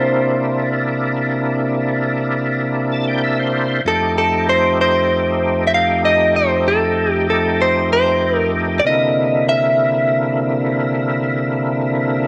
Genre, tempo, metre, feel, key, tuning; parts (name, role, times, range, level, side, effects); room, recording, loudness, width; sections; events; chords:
blues; 96 BPM; 4/4; straight; C mixolydian; A4 = 440 Hz
direct-recorded clean electric guitar; melody; 0.0-10.7 s; A4 to F5; -18 LUFS; equal
overdriven tonewheel organ; accompaniment; 0.0-12.3 s; F2 to A5; -20 LUFS; equal; slow rotary speaker, chorus vibrato
wet echo chamber reverb, RT60 1.7 s, digital ambience; -17 LUFS; mono
0.0-12.3 A section
tonewheel organ fill 2.6-3.9
0.0 C7; 3.9 F7; 8.9 C7